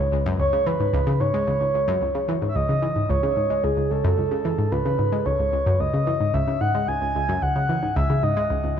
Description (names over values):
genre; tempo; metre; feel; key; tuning
ambient, sequencer-driven space music; 111 BPM; 4/4; straight; C# minor; A4 = 440 Hz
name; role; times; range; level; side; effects
breathy flute-like synth lead; melody; 0.0-8.8 s; G#4 to G#5; -23 LUFS; right 1 dB; chorus, tremolo, ping-pong delay
analog pluck; riff; 0.0-8.8 s; C#2 to G#3; -22 LUFS; equal; chorus, cassette tape, ping-pong delay
room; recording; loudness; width
wet plate reverb, RT60 2.7 s; none; -20 LUFS; side -8 dB against mid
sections
0.0-8.8 A section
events
none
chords
0.0 C#5